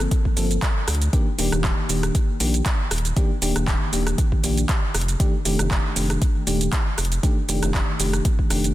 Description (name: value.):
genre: deep house.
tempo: 118 BPM.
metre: 4/4.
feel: swing 55% on 16ths.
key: unclear.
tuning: A4 = 440 Hz.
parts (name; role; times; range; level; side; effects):
mellow FM electric piano; stabs; 0.0-8.7 s; Eb3 to A4; -26 LUFS; left 1 dB; chorus, sidechain pumping, tape echo.
rubbery square bass; bass; 0.0-8.7 s; Eb1 to D2; -23 LUFS; equal; sidechain pumping.
deep house drum kit; drums; 0.0-8.7 s; handclaps, hi-hat, rim click, shaker; -26 LUFS; right 1 dB; overdrive.
electronic kick drum; drums; 0.1-8.5 s; none; -21 LUFS; equal; none.
room: little or no reverb.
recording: dense, heavily limited modern master.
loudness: -19 LUFS.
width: side -15 dB against mid.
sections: 0.0-8.7 A section.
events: drum fill 8.5.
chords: 0.0 Gm11; 1.1 Ebmaj7; 4.9 F13.